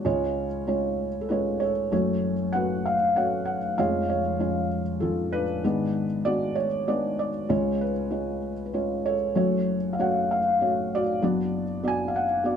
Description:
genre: acoustic folk-pop ballad.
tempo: 97 BPM.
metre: 3/4.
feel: straight.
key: F# harmonic minor.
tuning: A4 = 440 Hz.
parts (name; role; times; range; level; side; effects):
felt-muted upright piano; solo; 0.0-12.6 s; E#1 to G#5; -23 LUFS; equal; none.
room: moderate small room ambience, RT60 0.5 s.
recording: dark, warm production.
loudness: -23 LUFS.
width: side -8 dB against mid.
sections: 0.0-1.9 A section; 1.9-12.6 B section.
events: none.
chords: 0.1 C#; 1.9 F#m; 3.8 C#/E#; 5.6 G#dim; 7.5 C#; 9.4 F#m; 11.2 Bm/F#.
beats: | 0.05 0.67 1.30 | 1.92 2.54 3.16 | 3.78 4.40 5.02 | 5.64 6.25 6.87 | 7.49 8.11 8.73 | 9.36 9.98 10.60 | 11.22 11.84 12.45.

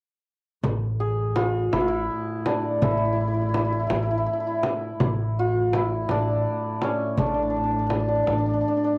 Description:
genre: Persian modal ensemble.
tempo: 55 BPM (dotted quarters).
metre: 6/8.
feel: straight.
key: A dastgah chahargah.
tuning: A4 = 440 Hz.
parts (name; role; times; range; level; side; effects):
upright bass; bass; 0.6-8.6 s; A1; -30 LUFS; equal; none.
frame drum; percussion; 0.6-8.4 s; none; -29 LUFS; equal; none.
muted double bass; drone; 0.7-9.0 s; A2; -35 LUFS; equal; cassette tape, plate reverb.
santur; melody; 1.0-9.0 s; C#4 to G#4; -26 LUFS; equal; cassette tape, plate reverb.
room: moderate small room reverb, RT60 0.6 s.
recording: home recording on cassette, lossy compression artefacts.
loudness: -24 LUFS.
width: mono.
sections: 0.6-9.0 A section.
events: none.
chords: none.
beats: | 0.64 1.73 | 2.82 3.92 | 5.01 6.10 | 7.19 8.28.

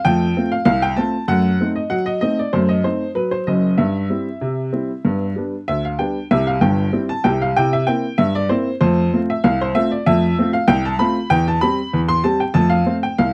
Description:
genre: ragtime piano.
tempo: 96 BPM.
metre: 2/4.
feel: straight.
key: C major.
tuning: A4 = 440 Hz.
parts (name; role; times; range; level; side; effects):
warm upright piano; solo; 0.0-13.3 s; F#1 to C6; -18 LUFS; equal; none.
room: light reverb.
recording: dry, close 1970s-style studio recording, vinyl crackle.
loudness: -18 LUFS.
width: mono.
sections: 0.0-6.3 A section; 6.3-13.3 B section.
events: none.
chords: 0.1 F; 1.3 F#dim7; 3.8 C/G; 5.1 G; 6.3 C; 7.6 C7; 8.8 F; 11.3 C/E; 12.5 F.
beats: | 0.05 0.68 | 1.30 1.92 | 2.54 3.17 | 3.79 4.42 | 5.05 5.68 | 6.31 6.93 | 7.56 8.18 | 8.80 9.43 | 10.05 10.68 | 11.30 11.92 | 12.55 13.17.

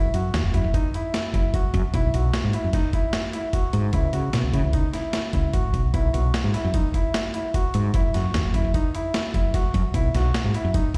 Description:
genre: progressive instrumental, band music in an uneven meter.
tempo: 150 BPM.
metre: 5/4.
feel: straight.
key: B major.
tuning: A4 = 438 Hz.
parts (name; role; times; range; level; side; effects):
warm grand piano; arpeggios; 0.0-11.0 s; D#4 to F#4; -31 LUFS; equal; slapback echo.
woody fretless electric bass; bass; 0.0-10.8 s; F#1 to C#3; -25 LUFS; equal; none.
boom bap sampler-style drum kit; drums; 0.1-11.0 s; hi-hat, kick drum, snare drum; -27 LUFS; equal; none.
room: little or no reverb.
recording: live gig heard through the venue's PA, recital hall reverb.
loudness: -23 LUFS.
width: mono.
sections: 0.0-11.0 A section.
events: none.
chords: 0.0 Esus2/F#; 1.9 Bsus4; 3.9 C#m7; 5.9 Bsus4; 7.9 Esus2/F#; 9.9 Bsus4.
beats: 0.34 0.74 1.14 1.54 | 1.94 2.34 2.74 3.14 3.54 | 3.94 4.34 4.74 5.14 5.54 | 5.94 6.34 6.74 7.14 7.54 | 7.94 8.34 8.74 9.14 9.54 | 9.94 10.34 10.74.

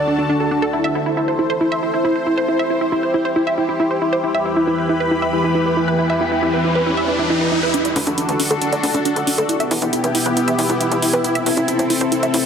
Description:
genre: uplifting trance.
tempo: 137 BPM.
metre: 4/4.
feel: straight.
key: E minor.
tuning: A4 = 441 Hz.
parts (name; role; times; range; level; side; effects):
lush unison pad; sustained chords; 0.0-12.5 s; D3 to B5; -19 LUFS; left 1 dB; chorus, phaser.
wide unison pluck; arpeggios; 0.0-12.4 s; D4 to E5; -19 LUFS; right 1 dB; dub echo.
riser; sound effects; 5.3-7.7 s; none; -24 LUFS; right 1 dB; none.
electronic hi-hat; drums; 7.7-12.4 s; none; -24 LUFS; right 1 dB; none.
tight sequencer bass; bass; 8.0-12.4 s; A1 to E2; -25 LUFS; left 1 dB; high-pass filter.
room: moderate lush hall reverb, RT60 2.2 s.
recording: heavily compressed radio sound, multiband compression, faint mains hum.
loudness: -16 LUFS.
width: side -7 dB against mid.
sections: 0.0-7.7 A section; 7.7-12.5 B section.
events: riser 5.3-7.7; build-up 7.7-12.5; filter sweep on synth pluck 7.7-12.5.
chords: 0.0 D; 0.7 Am; 4.2 Em; 7.7 D; 9.5 Em; 11.2 Am.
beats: 0.29 | 0.73 1.17 1.61 2.05 | 2.48 2.92 3.36 3.80 | 4.24 4.67 5.11 5.55 | 5.99 6.43 6.86 7.30 | 7.74 8.18 8.62 9.05 | 9.49 9.93 10.37 10.81 | 11.24 11.68 12.12.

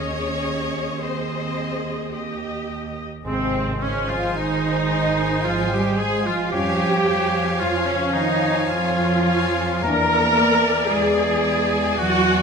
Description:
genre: classical, slow romantic movement for symphony orchestra.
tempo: 51-58 BPM.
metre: 3/4.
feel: rubato.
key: Ab major.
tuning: A4 = 440 Hz.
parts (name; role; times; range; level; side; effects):
rich studio violin section; melody; 0.0-12.4 s; C5 to Ab5; -33 LUFS; left 4 dB; none.
rich studio violin section; second line; 0.0-12.4 s; C5 to F5; -30 LUFS; left 5 dB; none.
warm studio viola section; accompaniment; 0.0-12.4 s; C4 to Eb5; -23 LUFS; right 1 dB; none.
rich studio double bass section; bass; 0.0-12.4 s; Ab1 to F2; -28 LUFS; right 2 dB; none.
warm studio cello section; bass; 0.0-12.4 s; C3 to Db4; -27 LUFS; right 2 dB; none.
warm bassoon; accompaniment; 3.2-12.4 s; E3 to Ab3; -30 LUFS; right 2 dB; none.
bright large flute ensemble; second line; 3.3-12.4 s; C5 to Bb5; -29 LUFS; left 4 dB; none.
clear oboe; second line; 3.3-12.4 s; C4 to Bb4; -28 LUFS; equal; none.
warm clarinet; second line; 3.3-12.4 s; C5 to D5; -28 LUFS; left 3 dB; none.
mellow French horn section; sustained chords; 3.3-10.3 s; E3 to D4; -30 LUFS; left 4 dB; none.
room: moderate recital hall reverb, RT60 1.4 s.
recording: none.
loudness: -19 LUFS.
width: side -5 dB against mid.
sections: 0.0-3.3 A section; 3.3-12.4 B section.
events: none.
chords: 0.0 Ab/Eb; 2.1 Eb; 3.3 Ab; 6.5 Db/F; 9.8 E7.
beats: 1.02 2.13 | 3.26 4.37 5.44 | 6.51 7.60 8.68 | 9.83 10.91 11.97.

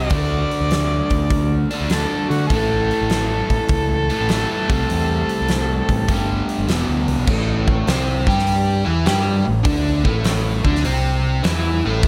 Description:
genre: blues rock power trio and southern rock.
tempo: 101 BPM.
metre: 4/4.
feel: swing 67% on 8ths.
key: unclear.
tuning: A4 = 439 Hz.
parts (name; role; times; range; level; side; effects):
clear harmonica; melody; 0.0-6.6 s; F#4 to D5; -26 LUFS; equal; overdrive.
dark smooth lead guitar; second line; 0.0-6.6 s; A3 to F#4; -32 LUFS; equal; overdrive.
overdriven electric guitar; riff; 0.0-12.1 s; E2 to G4; -24 LUFS; equal; none.
growling picked electric bass; bass; 0.0-12.1 s; E1 to D3; -23 LUFS; equal; overdrive.
huge arena drum kit; drums; 0.1-12.1 s; crash cymbal, hi-hat, kick drum, snare drum; -24 LUFS; equal; none.
room: light reverb.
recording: none.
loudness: -19 LUFS.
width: mono.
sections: 0.0-7.3 A section; 7.3-12.1 B section.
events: none.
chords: 0.1 D; 2.5 A; 4.6 C; 6.1 G5; 6.7 E5; 7.3 A5.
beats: | 0.12 0.71 1.31 1.91 | 2.50 3.10 3.70 4.29 | 4.89 5.49 6.08 6.68 | 7.27 7.87 8.46 9.06 | 9.65 10.25 10.84 11.44 | 12.03.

